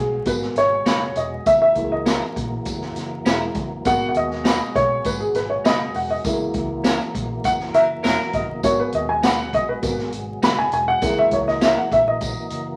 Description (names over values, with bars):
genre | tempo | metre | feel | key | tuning
uptempo 1960s-style soul | 100 BPM | 4/4 | straight | G# minor | A4 = 441 Hz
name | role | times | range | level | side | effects
dark upright piano | accompaniment | 0.0-12.6 s | G#3 to B5 | -22 LUFS | equal | none
tonewheel organ | sustained chords | 0.0-12.8 s | B2 to A#3 | -35 LUFS | equal | chorus vibrato, stopped rotary speaker
vintage muted fingered electric bass | bass | 0.0-12.7 s | E1 to D#2 | -36 LUFS | equal | none
swinging big-band drum kit | drums | 0.3-12.6 s | hi-hat, kick drum, snare drum | -27 LUFS | equal | none
tambourine | percussion | 0.3-12.4 s | none | -39 LUFS | equal | none
semi-hollow electric guitar | stabs | 0.9-11.8 s | C#4 to B4 | -30 LUFS | equal | none
warm horn section | second line | 7.7-8.5 s | F#3 to A#4 | -28 LUFS | equal | none
room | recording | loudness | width
wet studio reverb, RT60 0.8 s | vinyl crackle | -21 LUFS | mono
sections
0.0-12.8 A section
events
upright piano solo 0.0-12.8; band accent 6.2-8.6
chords
0.0 G#m7; 1.5 F#7; 3.9 G#m7; 6.2 F#7; 8.6 G#m7; 11.0 F#7